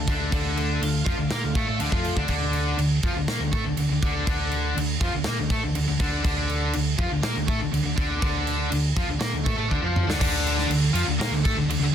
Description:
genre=quiet-loud alternative rock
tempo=121 BPM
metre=4/4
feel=straight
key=D minor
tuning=A4 = 440 Hz
part: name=twelve-string electric guitar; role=arpeggios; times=0.0-2.3 s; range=D3 to F4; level=-33 LUFS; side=equal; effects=ensemble chorus
part: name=distorted electric guitar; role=riff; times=0.0-11.9 s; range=D3 to Bb4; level=-28 LUFS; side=right 9 dB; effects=distortion
part: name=overdriven electric guitar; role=riff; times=0.0-11.9 s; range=D3 to Bb4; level=-28 LUFS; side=left 10 dB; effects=none
part: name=hollow-body short-scale fingered electric bass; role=bass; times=0.0-11.9 s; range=D2 to Bb2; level=-28 LUFS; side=equal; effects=none
part: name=big rock drum kit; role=drums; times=0.1-11.8 s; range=crash cymbal, kick drum, snare drum, toms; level=-27 LUFS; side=equal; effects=none
part: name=heavy high-gain guitar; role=riff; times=10.2-11.9 s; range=D3 to Bb4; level=-29 LUFS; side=left 1 dB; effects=distortion
room=little or no reverb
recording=dense, heavily limited modern master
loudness=-22 LUFS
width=side -9 dB against mid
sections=0.0-10.2 A section; 10.2-11.9 B section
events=drum fill 9.7-10.2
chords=0.0 Dm

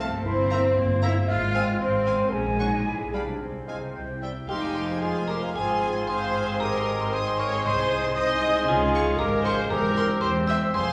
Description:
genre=cinematic, playful, whimsical film cue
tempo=115 BPM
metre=2/4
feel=straight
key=F minor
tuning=A4 = 440 Hz
part: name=clear studio violin section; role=melody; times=0.0-10.9 s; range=G5 to Eb6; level=-40 LUFS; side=equal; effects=none
part: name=clear clarinet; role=second line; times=0.0-10.9 s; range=Ab3 to C5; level=-34 LUFS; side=equal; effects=none
part: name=silver concert flute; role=second line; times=0.0-10.9 s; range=C5 to F6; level=-36 LUFS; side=equal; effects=none
part: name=warm oboe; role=second line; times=0.0-10.9 s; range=Eb5 to Ab5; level=-39 LUFS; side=equal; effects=none
part: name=warm studio violin section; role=second line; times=0.0-10.9 s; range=C5 to C6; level=-40 LUFS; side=equal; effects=none
part: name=warm bassoon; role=accompaniment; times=0.0-10.9 s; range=G3 to D4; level=-36 LUFS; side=equal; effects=none
part: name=warm studio viola section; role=accompaniment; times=0.0-10.9 s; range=C4 to E5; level=-32 LUFS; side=equal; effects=none
part: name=warm French horn section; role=sustained chords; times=0.0-10.9 s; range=F3 to F5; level=-34 LUFS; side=equal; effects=none
part: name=concert harp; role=arpeggios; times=0.0-10.9 s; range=F2 to C6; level=-36 LUFS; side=equal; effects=none
part: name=rich studio cello section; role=bass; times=0.0-10.9 s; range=E2 to F4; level=-36 LUFS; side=equal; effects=none
part: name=rich studio double bass section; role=bass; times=0.0-10.9 s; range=E1 to Db2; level=-33 LUFS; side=equal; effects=none
part: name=xylophone with wooden mallets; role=melody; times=4.5-10.9 s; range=G5 to E6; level=-35 LUFS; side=equal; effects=none
room=wet recital hall reverb, RT60 1.4 s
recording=recorded in a church or concert hall, studio ambience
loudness=-25 LUFS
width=mono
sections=0.0-4.5 A section; 4.5-10.9 B section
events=none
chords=0.3 C7/G; 1.3 Fm/Ab; 2.3 Gb/Bb; 2.9 Bdim7; 3.4 Fm/C; 4.0 C; 4.5 Fm; 5.6 Fm/Ab; 6.6 Ab; 7.7 Ab/C; 8.7 Db; 9.7 C/E

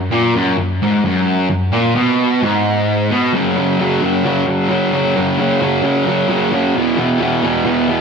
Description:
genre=rock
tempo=132 BPM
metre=4/4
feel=straight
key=F# mixolydian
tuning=A4 = 440 Hz
part: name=fuzz guitar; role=solo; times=0.0-8.0 s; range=E2 to F#3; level=-13 LUFS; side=equal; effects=distortion, tape echo
room=wet stone room reverb, RT60 1.1 s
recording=cassette tape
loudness=-13 LUFS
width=side -5 dB against mid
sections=0.0-3.3 A section; 3.3-8.0 B section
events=none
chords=0.0 F#; 3.3 F#5; 6.8 E5

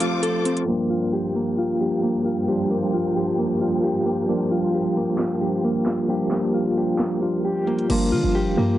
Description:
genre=hip hop, trap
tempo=133 BPM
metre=4/4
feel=half-time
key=G minor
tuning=A4 = 440 Hz
part: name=mellow tine electric piano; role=accompaniment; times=0.0-8.8 s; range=F3 to A4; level=-24 LUFS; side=right 1 dB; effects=medium stereo tremolo
part: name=warm symphonic string section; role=sustained chords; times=0.0-7.9 s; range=G2 to D6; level=-32 LUFS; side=equal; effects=none
part: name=mellow electric guitar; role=arpeggios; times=0.0-8.8 s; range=Bb3 to A4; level=-22 LUFS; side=left 1 dB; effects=tremolo, analog delay
part: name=trap drum kit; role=drums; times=0.0-8.0 s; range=crash cymbal, handclaps, hi-hat, snare drum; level=-30 LUFS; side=right 1 dB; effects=none
part: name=short 808-style bass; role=bass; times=7.9-8.8 s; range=F1 to D3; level=-23 LUFS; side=equal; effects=none
room=little or no reverb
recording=dry, gritty hardware recording, low-pass filter, nothing above 10.6 kHz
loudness=-20 LUFS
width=side -13 dB against mid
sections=0.7-7.9 A section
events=break 0.0-0.7; filter sweep 0.7-7.9; hi-hats muted 7.9-8.8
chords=0.0 F; 0.7 Gm7

